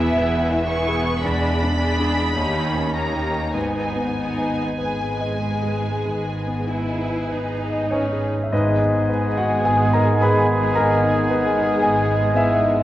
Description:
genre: classical, romantic movement for piano and orchestra.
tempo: 47-57 BPM.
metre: 4/4.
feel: rubato.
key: G# minor.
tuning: A4 = 440 Hz.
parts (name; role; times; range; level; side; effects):
clear grand piano; melody; 0.0-12.8 s; D#2 to B5; -22 LUFS; left 1 dB; none.
warm studio violin section; melody; 0.0-12.8 s; G#4 to C#6; -28 LUFS; equal; none.
warm studio violin section; second line; 0.0-12.8 s; B3 to D5; -31 LUFS; equal; none.
rich studio viola section; accompaniment; 0.0-12.8 s; G#3 to E4; -28 LUFS; equal; none.
dark studio double bass section; bass; 0.0-12.8 s; E1 to D#2; -28 LUFS; right 2 dB; none.
rich studio cello section; bass; 0.0-12.8 s; D#2 to G#2; -27 LUFS; right 1 dB; none.
mellow clarinet; second line; 8.5-12.8 s; B3; -30 LUFS; left 2 dB; none.
silver concert flute; second line; 8.5-12.8 s; G#5; -30 LUFS; left 5 dB; none.
warm oboe; second line; 8.5-12.8 s; G#4; -27 LUFS; right 1 dB; none.
clear bassoon; accompaniment; 8.5-12.8 s; G#3; -24 LUFS; right 1 dB; none.
mellow French horn section; sustained chords; 8.5-12.8 s; G#3 to B3; -30 LUFS; left 2 dB; none.
room: wet scoring stage reverb, RT60 1.5 s.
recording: worn, warbling old tape, cassette tape, warbly pitch drift.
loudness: -18 LUFS.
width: side -14 dB against mid.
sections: 0.0-8.5 A section; 8.5-12.8 A section.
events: none.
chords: 0.0 E; 1.2 E7; 2.4 D#7; 3.5 G#m.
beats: 0.15 1.22 2.36 | 3.55 4.79 6.05 7.30 | 8.52 9.65 10.76 11.83.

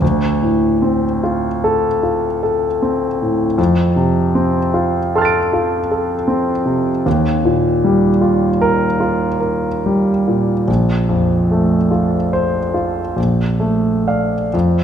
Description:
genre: classical, impressionist solo piano.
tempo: 41-55 BPM (dotted quarters).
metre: 9/8.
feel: rubato.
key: unclear.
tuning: A4 = 440 Hz.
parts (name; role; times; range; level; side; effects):
warm concert grand piano; solo; 0.0-14.8 s; Bb1 to D7; -14 LUFS; equal; none.
room: moderate scoring stage reverb, RT60 1.6 s.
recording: minimal, uncompressed stereo recording.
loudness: -14 LUFS.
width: side -8 dB against mid.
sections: 0.0-14.8 A section.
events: none.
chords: 0.0 Dm7; 3.6 F6; 7.1 Ebadd9; 10.7 Bbsus2; 13.2 Bbmaj7.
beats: | 0.02 1.21 2.41 | 3.58 4.74 5.92 | 7.06 8.24 9.44 | 10.68 11.93 13.17 | 14.54.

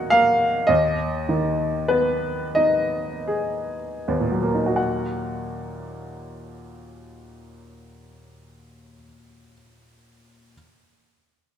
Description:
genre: classical, romantic nocturne for solo piano.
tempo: 24-38 BPM (dotted quarters).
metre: 6/8.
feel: rubato.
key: Eb minor.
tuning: A4 = 440 Hz.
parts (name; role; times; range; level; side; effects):
bright baby grand piano; solo; 0.0-10.6 s; Eb2 to Gb5; -20 LUFS; equal; none.
room: wet recital hall reverb, RT60 1.3 s.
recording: minimal, uncompressed stereo recording.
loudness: -20 LUFS.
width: side -9 dB against mid.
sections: 0.0-4.8 A section; 4.8-8.3 B section.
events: slowing down 0.0-4.8.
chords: 0.0 Ebm; 0.7 Abm/Eb; 4.8 Ebm.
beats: | 0.69 2.55 | 4.77 6.54.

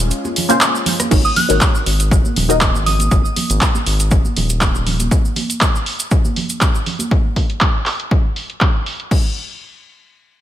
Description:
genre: deep house.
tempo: 120 BPM.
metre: 4/4.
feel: swing 54% on 16ths.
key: unclear.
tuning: A4 = 439 Hz.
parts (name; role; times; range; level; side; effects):
warm analog pad; sustained chords; 0.0-1.1 s; G#3 to E#4; -27 LUFS; left 3 dB; chorus, vintage 12-bit sampler grit, sidechain pumping.
round analog bass; bass; 0.0-5.1 s; D#1 to G#1; -18 LUFS; equal; tube saturation, sidechain pumping.
deep house drum kit; drums; 0.0-9.2 s; crash cymbal, handclaps, hi-hat, rim click; -19 LUFS; equal; overdrive, low-pass filter on hats, studio reverb, low-pass filter on snare, low-pass filter on cymbals.
cabasa; percussion; 0.1-7.1 s; none; -25 LUFS; right 3 dB; none.
congas; percussion; 0.2-7.1 s; none; -25 LUFS; right 4 dB; sidechain pumping on perc.
filtered dub chord stab; stabs; 0.5-3.1 s; A#3 to D#5; -19 LUFS; left 1 dB; phaser, sidechain pumping, tape echo.
electronic kick drum; drums; 1.1-9.2 s; none; -15 LUFS; equal; studio reverb.
soft synth bell; melody; 1.2-3.1 s; D#6 to F#6; -22 LUFS; right 2 dB; chorus, tape echo.
room: little or no reverb.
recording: none.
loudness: -14 LUFS.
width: side -12 dB against mid.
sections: 0.0-1.1 A section; 1.1-9.1 B section; 9.1-10.4 C section.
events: drop 0.0-1.1.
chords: 0.0 D#9sus4; 1.1 G#9sus4; 4.9 N.C..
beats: 0.11 0.61 | 1.11 1.61 2.11 2.61 | 3.11 3.61 4.11 4.61 | 5.11 5.61 6.11 6.61 | 7.11 7.61 8.11 8.61 | 9.11.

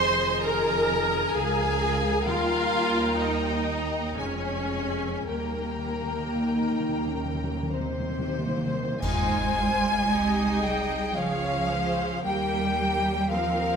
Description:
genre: classical, slow romantic movement for symphony orchestra.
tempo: 45-67 BPM.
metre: 3/4.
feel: rubato.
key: Ab major.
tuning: A4 = 440 Hz.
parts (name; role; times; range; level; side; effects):
warm symphonic violin section; melody; 0.0-13.8 s; Bb4 to C6; -32 LUFS; left 3 dB; none.
warm symphonic violin section; second line; 0.0-13.8 s; C5 to Bb5; -33 LUFS; left 3 dB; none.
rich symphonic viola section; accompaniment; 0.0-13.8 s; Bb3 to C5; -29 LUFS; right 1 dB; none.
mellow French horn section; sustained chords; 0.0-9.0 s; Eb3 to Bb4; -33 LUFS; left 2 dB; none.
rich studio cello section; bass; 0.0-13.8 s; Db2 to Ab3; -31 LUFS; right 3 dB; none.
rich symphonic double bass section; bass; 0.0-13.8 s; F1 to Eb2; -34 LUFS; right 3 dB; none.
timpani; percussion; 2.3-9.0 s; Eb3; -35 LUFS; left 1 dB; none.
mellow hollow silver concert flute; second line; 7.7-13.8 s; C5 to Ab5; -29 LUFS; left 1 dB; none.
clash cymbals and concert bass drum; percussion; 9.0-11.1 s; none; -34 LUFS; equal; none.
room: moderate scoring stage reverb, RT60 1.9 s.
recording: none.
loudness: -24 LUFS.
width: side -6 dB against mid.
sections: 0.0-9.0 A section; 9.0-13.8 B section.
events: timpani fill 5.3-9.0; band accent 9.0-10.1.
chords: 0.0 Fm7; 1.4 Bbm7/Db; 2.3 Eb; 4.2 Db/F; 5.3 Eb; 9.0 Ab; 11.2 Dbmaj7; 12.2 Eb.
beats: 0.45 1.36 | 2.27 3.19 4.19 | 5.29 6.45 7.74 | 9.02 10.11 11.16 | 12.24 13.30.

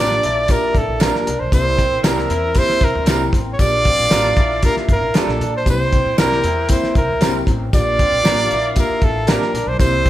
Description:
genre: uptempo 1960s-style soul.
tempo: 116 BPM.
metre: 4/4.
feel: straight.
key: unclear.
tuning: A4 = 440 Hz.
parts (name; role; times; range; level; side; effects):
warm trumpet; melody; 0.0-10.1 s; A4 to D5; -18 LUFS; right 1 dB; none.
warm horn section; second line; 0.0-10.1 s; Bb3 to G5; -29 LUFS; right 1 dB; none.
mellow tine electric piano; accompaniment; 0.0-10.1 s; Bb3 to Bb4; -26 LUFS; left 1 dB; medium stereo tremolo.
electric guitar through a small old amp; riff; 0.0-10.1 s; C4 to E4; -28 LUFS; left 2 dB; spring reverb.
electric guitar through a small old amp; stabs; 0.0-9.4 s; G3 to Bb4; -26 LUFS; right 5 dB; none.
upright bass; bass; 0.0-10.1 s; G1 to Bb2; -24 LUFS; equal; none.
cloth-damped thuddy drum kit; drums; 0.1-10.1 s; hi-hat, kick drum, snare drum; -18 LUFS; equal; none.
tambourine; percussion; 0.5-9.9 s; none; -34 LUFS; left 4 dB; none.
room: moderate large studio reverb, RT60 1.3 s.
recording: band playing live in one room.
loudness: -14 LUFS.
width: side -14 dB against mid.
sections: 0.0-10.1 A section.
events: none.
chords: 0.0 Bb6; 1.5 C7; 3.6 Bb6; 5.7 C7; 7.7 Bb6.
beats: 0.48 1.00 | 1.52 2.04 2.55 3.07 | 3.59 4.11 4.62 5.14 | 5.66 6.17 6.69 7.21 | 7.73 8.24 8.76 9.28 | 9.79.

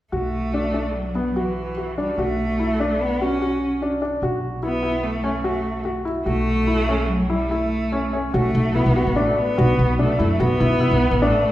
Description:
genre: contemporary instrumental, chamber music in an uneven meter.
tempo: 146 BPM.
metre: 5/4.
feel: straight.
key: B minor.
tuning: A4 = 440 Hz.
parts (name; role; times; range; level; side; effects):
warm cello; melody; 0.1-11.5 s; E3 to C#4; -23 LUFS; equal; none.
felt-muted upright piano; arpeggios; 0.1-11.5 s; B3 to F#4; -23 LUFS; left 1 dB; none.
upright bass; bass; 0.1-11.3 s; A1 to F#2; -24 LUFS; equal; none.
room: wet recital hall reverb, RT60 1.4 s.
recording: recorded in a church or concert hall.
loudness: -19 LUFS.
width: side -14 dB against mid.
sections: 0.1-8.3 A section; 8.3-11.5 B section.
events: none.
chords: 0.1 Bm7; 4.2 F#m7/B; 8.3 Bm7.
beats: | 0.12 0.53 0.95 1.36 1.77 | 2.18 2.59 3.00 3.40 3.81 | 4.22 4.62 5.03 5.44 5.85 | 6.26 6.67 7.09 7.50 7.92 | 8.34 8.75 9.17 9.58 9.99 | 10.40 10.81 11.22.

